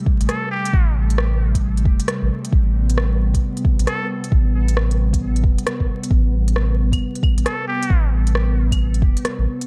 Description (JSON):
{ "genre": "future garage", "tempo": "134 BPM", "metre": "4/4", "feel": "swing 64% on 16ths", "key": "A minor", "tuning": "A4 = 440 Hz", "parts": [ { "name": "airy breathy pad", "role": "sustained chords", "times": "0.0-9.7 s", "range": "C3 to B3", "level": "-29 LUFS", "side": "equal", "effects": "chorus, sidechain pumping" }, { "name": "electronic kick drum", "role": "drums", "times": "0.1-9.1 s", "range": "none", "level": "-20 LUFS", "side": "equal", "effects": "none" }, { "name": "warm sub bass", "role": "bass", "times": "0.2-9.5 s", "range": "E1 to A1", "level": "-21 LUFS", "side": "equal", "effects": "sidechain pumping" }, { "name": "organic electronic drum kit", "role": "drums", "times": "0.2-9.7 s", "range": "claves, hi-hat, rim click", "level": "-29 LUFS", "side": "equal", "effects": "none" }, { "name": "trumpet with straight mute", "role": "melody", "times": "0.3-1.0, 3.9-4.1, 7.5-8.1 s", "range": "G4 to A4", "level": "-31 LUFS", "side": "equal", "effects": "analog delay" } ], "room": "light reverb, digital ambience", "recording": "vinyl crackle", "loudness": "-19 LUFS", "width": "mono", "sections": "0.0-9.7 A section", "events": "none", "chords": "0.0 Am7", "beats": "0.29 | 0.74 1.19 1.64 2.08 | 2.53 2.98 3.43 3.87 | 4.32 4.77 5.22 5.67 | 6.11 6.56 7.01 7.46 | 7.90 8.35 8.80 9.25" }